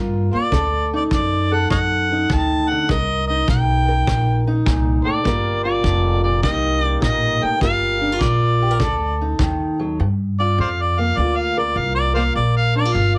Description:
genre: acoustic country blues, solo or duo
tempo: 102 BPM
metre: 4/4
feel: swing 67% on 8ths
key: G minor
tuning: A4 = 442 Hz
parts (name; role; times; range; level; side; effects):
- fingerpicked steel-string acoustic guitar; accompaniment; 0.0-13.2 s; G2 to Bb4; -25 LUFS; equal; none
- upright bass; bass; 0.0-13.2 s; F1 to G2; -23 LUFS; equal; none
- mellow harmonica; melody; 0.3-13.2 s; C5 to A5; -23 LUFS; equal; none
- kick drum; drums; 0.5-9.6 s; none; -26 LUFS; equal; none
room: moderate studio reverb, RT60 0.5 s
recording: heavily compressed radio sound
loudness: -19 LUFS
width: mono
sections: 0.0-10.0 A section; 10.0-13.2 B section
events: harmonica solo 10.0-13.2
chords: 0.0 Gm7; 0.5 D; 2.9 Cm7; 5.3 Gm7; 6.4 Cm7; 7.6 Gm7; 8.8 D; 10.0 Gm7

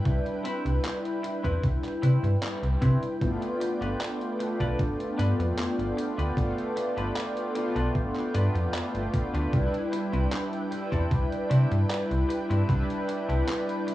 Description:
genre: vaporwave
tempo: 76 BPM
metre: 4/4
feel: straight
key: C major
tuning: A4 = 441 Hz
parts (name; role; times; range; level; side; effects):
- mellow synth brass; accompaniment; 0.0-13.9 s; G3 to B4; -30 LUFS; equal; lush chorus, cassette tape, tape echo
- lush unison pad; sustained chords; 0.0-13.9 s; E4 to G5; -37 LUFS; equal; chorus, cassette tape
- slap-like FM bass; bass; 0.1-13.4 s; G1 to C3; -25 LUFS; equal; none
- detuned 8-bit digital drum machine; drums; 0.1-13.9 s; handclaps, hi-hat; -38 LUFS; equal; studio reverb, cassette tape
- electronic kick drum; drums; 0.1-12.9 s; none; -29 LUFS; equal; studio reverb, cassette tape
- semi-hollow electric guitar; riff; 0.4-13.9 s; C4 to B4; -40 LUFS; left 2 dB; wide subtle chorus, cassette tape, tape echo
room: light reverb, digital ambience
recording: home recording on cassette, studio reverb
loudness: -25 LUFS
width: side -15 dB against mid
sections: 0.0-3.2 A section; 3.2-13.9 B section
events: band accent 2.4-2.8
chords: 0.0 Cmaj7; 3.2 G7; 9.5 Cmaj7

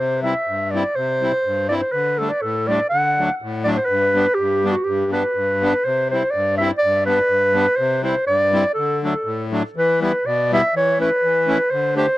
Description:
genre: alpine folk, alpine dance band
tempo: 123 BPM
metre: 2/4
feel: straight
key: G major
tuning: A4 = 440 Hz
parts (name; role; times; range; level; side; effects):
- warm clarinet; melody; 0.0-12.2 s; F#4 to F#5; -18 LUFS; right 1 dB; tape echo
- accordion; accompaniment; 0.0-12.1 s; G2 to G4; -22 LUFS; left 2 dB; none
room: light reverb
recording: dry, close 1970s-style studio recording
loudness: -17 LUFS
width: side -16 dB against mid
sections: 0.0-5.9 A section; 5.9-12.2 B section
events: none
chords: 0.0 C; 1.9 Dsus4; 2.9 D; 3.9 G; 5.9 C; 6.8 G; 7.8 Cadd9; 8.8 D; 9.8 Em; 10.7 A/E; 11.7 Dsus4

